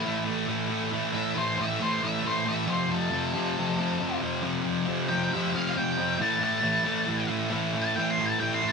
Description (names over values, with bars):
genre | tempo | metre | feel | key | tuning
rock | 136 BPM | 4/4 | straight | A minor | A4 = 441 Hz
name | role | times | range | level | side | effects
octave-fuzz lead guitar | melody | 0.0-8.7 s | E4 to C6 | -29 LUFS | left 1 dB | distortion
thick fuzz guitar | riff | 0.0-8.7 s | F2 to A3 | -26 LUFS | equal | distortion
room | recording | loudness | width
moderate studio reverb, RT60 0.5 s | band playing live in one room | -25 LUFS | side -5 dB against mid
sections
0.0-8.7 A section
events
lead electric guitar solo 0.0-8.7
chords
0.0 A5; 2.7 F; 6.2 A5